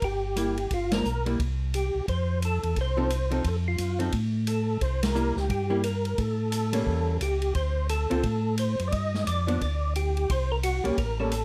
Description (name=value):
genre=soul jazz organ trio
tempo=175 BPM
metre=4/4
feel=swing 62% on 8ths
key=C mixolydian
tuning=A4 = 440 Hz
part: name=percussive tonewheel organ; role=melody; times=0.0-11.4 s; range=F4 to Eb5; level=-33 LUFS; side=equal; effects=slow rotary speaker, chorus vibrato
part: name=mellow tonewheel organ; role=bass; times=0.0-11.4 s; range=G1 to A2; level=-30 LUFS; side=equal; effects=slow rotary speaker
part: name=swinging big-band drum kit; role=drums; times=0.0-11.4 s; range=hi-hat, kick drum, ride cymbal, snare drum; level=-36 LUFS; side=equal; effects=none
part: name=archtop guitar, miked and amplified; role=accompaniment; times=0.4-11.3 s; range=D3 to A4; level=-32 LUFS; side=equal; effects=none
room=light reverb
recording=none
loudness=-27 LUFS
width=mono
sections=0.0-11.4 A section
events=band accent 0.9, 5.0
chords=0.0 C7 (rootless); 0.7 Gm7; 1.4 C5; 2.1 F7; 4.8 C7; 6.2 A7b9; 7.6 D7(no3); 8.9 G7(no3); 10.3 C5